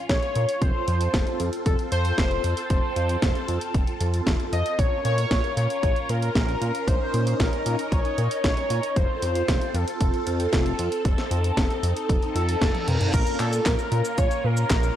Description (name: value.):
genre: italo disco.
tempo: 115 BPM.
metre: 4/4.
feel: straight.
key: Bb harmonic minor.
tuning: A4 = 440 Hz.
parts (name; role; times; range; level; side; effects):
phased string machine; sustained chords; 0.0-15.0 s; Bb3 to C6; -31 LUFS; equal; ensemble chorus, phaser.
wide unison lead; melody; 0.1-15.0 s; A4 to Eb5; -27 LUFS; equal; wide subtle chorus, analog delay.
chorused synth bass; bass; 0.1-14.9 s; F1 to Bb2; -26 LUFS; equal; none.
electronic kick drum; drums; 0.1-14.8 s; none; -24 LUFS; equal; none.
house drum kit; drums; 0.1-14.9 s; cabasa, crash cymbal, handclaps, hi-hat, snare drum, toms; -29 LUFS; equal; none.
reverse cymbal; sound effects; 12.3-13.1 s; none; -34 LUFS; right 2 dB; none.
room: digital ambience.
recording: dry, gritty hardware recording.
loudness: -21 LUFS.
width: side -11 dB against mid.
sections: 0.0-13.1 A section; 13.1-15.0 B section.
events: reverse cymbal 12.3-13.1; drum fill 12.7-13.1.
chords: 0.0 Bbm; 0.6 F; 4.8 Bbm; 9.0 F; 13.1 Bbm.